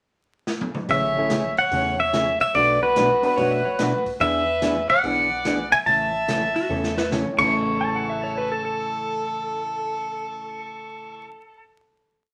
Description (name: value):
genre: country, western swing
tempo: 144 BPM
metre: 4/4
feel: swing 65% on 8ths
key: A major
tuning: A4 = 440 Hz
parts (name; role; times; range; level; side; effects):
- swinging big-band drum kit; drums; 0.5-7.5 s; crash cymbal, hi-hat, kick drum, snare drum, toms; -34 LUFS; equal; none
- pedal steel guitar; melody; 0.9-11.2 s; B4 to C#6; -23 LUFS; equal; none
- clear fiddle; second line; 0.9-11.2 s; F#4 to E5; -32 LUFS; equal; none
- hollow-body jazz guitar; accompaniment; 0.9-11.3 s; A2 to A4; -30 LUFS; equal; none
- woody FM bass; bass; 0.9-11.2 s; F#1 to E2; -40 LUFS; equal; none
- warm upright piano; accompaniment; 1.2-12.3 s; A2 to G#7; -35 LUFS; equal; none
- clean lap steel guitar; second line; 3.4-11.6 s; F#4 to A5; -32 LUFS; equal; none
room: wet studio ambience, RT60 0.5 s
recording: vinyl crackle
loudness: -22 LUFS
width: mono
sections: 0.0-0.9 pickup bar; 0.9-7.5 A section; 7.5-10.9 final chord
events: drum fill 0.5-0.9, 6.7-7.1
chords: 0.0 N.C.; 0.9 Amaj7; 2.5 Bm7; 4.2 E7; 5.9 A